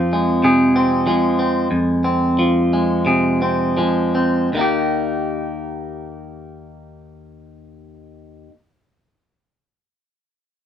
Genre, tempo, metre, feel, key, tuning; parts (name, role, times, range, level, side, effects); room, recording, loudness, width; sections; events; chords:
folk, solo fingerstyle acoustic guitar; 77-97 BPM; 4/4; straight; Eb major; A4 = 436 Hz
clean electric guitar; solo; 0.0-8.6 s; Eb2 to Ab4; -16 LUFS; equal
light reverb; -15 LUFS; side -9 dB against mid
0.0-4.5 A section; 4.5-7.6 B section
slowing down 0.0-4.5
0.0 Fm; 4.5 Eb